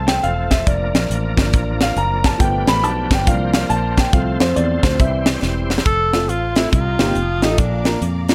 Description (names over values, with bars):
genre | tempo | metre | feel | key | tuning
uptempo gospel | 139 BPM | 4/4 | swing 64% on 8ths | F major | A4 = 439 Hz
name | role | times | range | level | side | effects
warm grand piano | accompaniment | 0.0-8.3 s | Bb2 to B5 | -23 LUFS | equal | none
bright tonewheel organ | sustained chords | 0.0-5.8 s | E3 to C5 | -29 LUFS | equal | slow rotary speaker, overdrive, chorus vibrato
fingered electric bass | bass | 0.0-8.3 s | E1 to F2 | -24 LUFS | equal | none
crisp fusion drum kit | drums | 0.1-8.3 s | hi-hat, kick drum, snare drum | -20 LUFS | equal | none
breathy tenor saxophone | melody | 5.9-8.0 s | D4 to A4 | -23 LUFS | equal | none
warm studio string section | sustained chords | 5.9-8.3 s | C5 to Eb6 | -35 LUFS | equal | none
room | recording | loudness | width
light reverb | none | -17 LUFS | mono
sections
0.0-5.9 A section; 5.9-8.3 B section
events
grand piano solo 0.0-5.9; drum fill 5.4-5.9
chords
0.0 F; 0.7 Bb/F; 2.4 G7; 3.3 C9sus4; 4.1 F/C; 5.0 C; 5.9 F; 6.7 Cm7; 7.2 F9; 7.6 Bb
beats
0.24 | 0.67 1.11 1.54 1.97 | 2.40 2.83 3.27 3.70 | 4.13 4.56 4.99 5.42 | 5.86 6.29 6.72 7.15 | 7.58 8.01